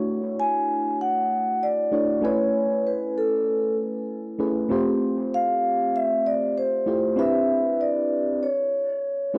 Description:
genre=chillout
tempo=97 BPM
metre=4/4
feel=straight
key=unclear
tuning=A4 = 442 Hz
part: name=mellow FM electric piano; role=accompaniment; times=0.0-9.4 s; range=A3 to G#5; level=-28 LUFS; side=equal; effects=chorus
part: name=vibraphone with soft mallets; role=melody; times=0.4-9.3 s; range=A4 to G#5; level=-25 LUFS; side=equal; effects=analog delay
room=moderate plate reverb, RT60 2.7 s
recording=dry, gritty hardware recording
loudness=-24 LUFS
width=mono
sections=0.0-9.4 A section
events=none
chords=0.0 Dmaj9; 2.2 Amaj9; 4.7 Fmaj9; 7.2 Cmaj9; 8.4 N.C.

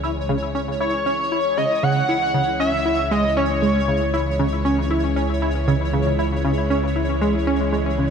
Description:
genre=ambient, sequencer-driven space music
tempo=117 BPM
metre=4/4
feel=straight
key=C# minor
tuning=A4 = 441 Hz
part: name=lush unison pad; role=sustained chords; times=0.0-8.1 s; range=E3 to C#5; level=-27 LUFS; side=right 1 dB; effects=chorus
part: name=tight sequenced synth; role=riff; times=0.0-8.1 s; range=C#3 to E4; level=-22 LUFS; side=right 1 dB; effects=chorus, ping-pong delay
part: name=analog drone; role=bass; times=0.0-8.1 s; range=C#2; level=-25 LUFS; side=equal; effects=chorus
part: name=pulsing gated texture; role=texture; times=0.0-8.1 s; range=C#5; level=-29 LUFS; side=equal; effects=chorus, built-in reverb
part: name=pulse-width lead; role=melody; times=0.8-4.4 s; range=C#5 to F#5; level=-22 LUFS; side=equal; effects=chorus, ping-pong delay
room=moderate plate reverb, RT60 2.9 s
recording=none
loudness=-18 LUFS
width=side -6 dB against mid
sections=0.0-8.1 A section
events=none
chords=0.0 C#m

